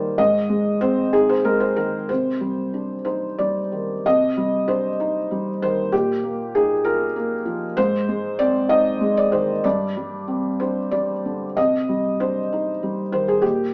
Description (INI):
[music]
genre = neoclassical minimalist piano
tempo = 63 BPM (dotted quarters)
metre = 6/8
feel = uneven beats, rubato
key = C minor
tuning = A4 = 439 Hz
[part]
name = felt-muted upright piano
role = solo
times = 0.0-13.7 s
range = G2 to Eb5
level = -21 LUFS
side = equal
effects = none
[sound]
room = moderate stone room reverb, RT60 1.0 s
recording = band playing live in one room, small speaker sound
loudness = -21 LUFS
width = mono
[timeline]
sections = 0.0-4.0 A section; 4.0-13.7 A section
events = none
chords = 0.2 Ab; 2.1 Cmadd9; 5.9 Ebadd9/Bb; 7.8 Ab; 9.6 Gsus4; 11.6 Cmadd9